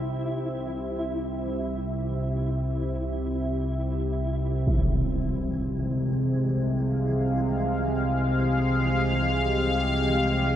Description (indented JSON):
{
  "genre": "dark ambient drone",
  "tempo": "free time",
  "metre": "none",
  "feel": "none",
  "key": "unclear",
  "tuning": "A4 = 440 Hz",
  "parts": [
    { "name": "sweeping resonant pad", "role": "sustained chords", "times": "0.0-10.6 s", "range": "C3 to F5", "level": "-29 LUFS", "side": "left 1 dB", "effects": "chorus, shimmer reverb" },
    { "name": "analog drone", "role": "drone", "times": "0.0-10.6 s", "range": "C2 to C3", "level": "-26 LUFS", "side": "equal", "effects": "chorus" },
    { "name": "flickering grainy texture", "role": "texture", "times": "0.0-10.6 s", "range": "E3 to E4", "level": "-36 LUFS", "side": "left 1 dB", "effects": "built-in reverb, shimmer reverb" },
    { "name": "impact", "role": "percussion", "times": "4.7-4.9 s", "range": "none", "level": "-30 LUFS", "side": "equal", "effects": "low-pass filter on sfx" }
  ],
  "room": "wet cathedral reverb, RT60 5.9 s",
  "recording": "none",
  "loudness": "-24 LUFS",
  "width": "side -10 dB against mid",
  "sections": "0.0-10.6 A section",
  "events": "fade-out on synth texture 0.0-10.6",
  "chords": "0.0 C; 4.7 Fmadd9/C",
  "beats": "free time"
}